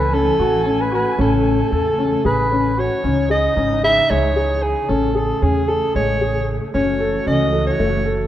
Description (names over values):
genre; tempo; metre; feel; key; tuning
contemporary instrumental, chamber music in an uneven meter; 227 BPM (eighths); 7/8; straight; unclear; A4 = 440 Hz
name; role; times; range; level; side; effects
mellow soprano saxophone; melody; 0.0-8.3 s; G#4 to E5; -19 LUFS; right 1 dB; none
muted studio string section; sustained chords; 0.0-8.3 s; C#3 to G#5; -26 LUFS; right 1 dB; none
warm concert grand piano; arpeggios; 0.0-8.3 s; G#3 to A4; -21 LUFS; left 4 dB; none
upright bass; bass; 0.0-8.3 s; F#1 to E2; -22 LUFS; right 2 dB; none
room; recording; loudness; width
moderate recital hall reverb, RT60 1.7 s; none; -15 LUFS; side -12 dB against mid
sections
0.0-3.0 A section; 3.0-8.3 B section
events
none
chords
0.0 F#m9/A; 3.0 C#madd9; 4.9 Amaj7; 6.7 F#m7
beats
0.13 0.40 0.66 0.93 | 1.19 1.46 1.72 1.98 2.25 2.51 2.78 | 3.04 3.31 3.57 3.83 4.10 4.36 4.63 | 4.89 5.16 5.42 5.68 5.95 6.21 6.48 | 6.74 7.00 7.27 7.53 7.80 8.06